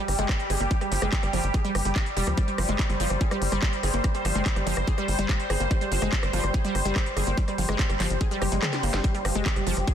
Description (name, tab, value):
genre	psychedelic trance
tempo	144 BPM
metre	4/4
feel	straight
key	unclear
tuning	A4 = 440 Hz
part	bubbling stepped-filter texture	sustained chords	0.0-9.9 s	G3 to C5	-30 LUFS	equal	chorus, built-in reverb, sidechain pumping
part	wide unison pluck	riff	0.0-9.9 s	F3 to Ab4	-31 LUFS	moving between left 2 dB and right 4 dB	auto-pan, sidechain pumping, tape echo
part	tight sequencer bass	bass	0.1-9.8 s	F1 to D2	-27 LUFS	equal	none
part	drum and bass drum kit	drums	0.1-9.9 s	handclaps, hi-hat, rim click, snare drum, toms	-31 LUFS	left 1 dB	studio reverb
part	electronic kick drum	drums	0.3-9.9 s	none	-25 LUFS	equal	studio reverb
part	swell	sound effects	8.4-9.0 s	none	-37 LUFS	right 4 dB	none
room	light reverb, digital ambience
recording	dense, heavily limited modern master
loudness	-23 LUFS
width	side -9 dB against mid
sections	0.0-9.9 A section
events	swell 8.4-9.0; drum fill 8.4-9.0; kick drops out 8.6-9.0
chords	0.0 G5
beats	0.29 | 0.71 1.12 1.54 1.96 | 2.38 2.79 3.21 3.62 | 4.04 4.46 4.88 5.29 | 5.71 6.12 6.54 6.96 | 7.38 7.79 8.21 8.62 | 9.04 9.46 9.88